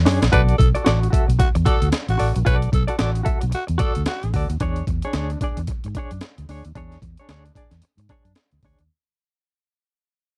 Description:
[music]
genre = funk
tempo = 112 BPM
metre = 4/4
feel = swing 60% on 16ths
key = B dorian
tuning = A4 = 440 Hz
[part]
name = vintage muted fingered electric bass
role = bass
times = 0.0-8.9 s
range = A1 to G#2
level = -23 LUFS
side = equal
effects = none
[part]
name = semi-hollow electric guitar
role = accompaniment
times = 0.1-8.8 s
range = D4 to E5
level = -28 LUFS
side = equal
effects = tremolo
[part]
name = breakbeat sampler-style drum kit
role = drums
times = 0.1-8.9 s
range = hi-hat, kick drum, snare drum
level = -24 LUFS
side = equal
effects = none
[part]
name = growling tenor saxophone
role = second line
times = 0.3-4.3 s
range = F#4 to B4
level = -27 LUFS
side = equal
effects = none
[sound]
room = little or no reverb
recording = dry, close 1970s-style studio recording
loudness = -20 LUFS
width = mono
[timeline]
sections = 0.3-8.9 A section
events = drum fill 0.0-0.3; fade-out 0.3-8.9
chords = 0.3 Bm7; 4.6 E13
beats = | 0.32 0.86 1.39 1.93 | 2.47 3.00 3.54 4.07 | 4.61 5.14 5.68 6.22 | 6.75 7.29 7.82 8.36

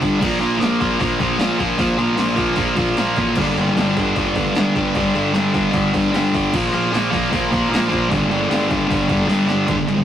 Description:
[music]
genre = garage rock duo or trio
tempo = 152 BPM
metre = 4/4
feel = straight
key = G minor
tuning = A4 = 440 Hz
[part]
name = thick fuzz guitar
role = riff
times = 0.0-10.0 s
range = G2 to Bb3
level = -17 LUFS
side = equal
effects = distortion
[part]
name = fuzz picked electric bass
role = bass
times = 0.0-10.0 s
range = G1 to Bb1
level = -26 LUFS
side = right 1 dB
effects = overdrive
[part]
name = punchy analog drum machine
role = drums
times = 0.0-10.0 s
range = crash cymbal, hi-hat, kick drum, ride cymbal, snare drum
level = -25 LUFS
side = equal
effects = none
[sound]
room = moderate stone room reverb, RT60 1.2 s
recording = rough rehearsal-room recording, tube saturation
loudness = -16 LUFS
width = side -10 dB against mid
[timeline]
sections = 0.0-9.7 A section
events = drum fill 9.3-9.7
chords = 0.2 Bb5; 3.4 G5; 6.5 Bb5; 8.1 G5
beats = | 0.20 0.60 0.99 1.39 | 1.78 2.18 2.58 2.97 | 3.37 3.77 4.16 4.56 | 4.95 5.35 5.74 6.14 | 6.53 6.93 7.32 7.71 | 8.11 8.50 8.90 9.29 | 9.69

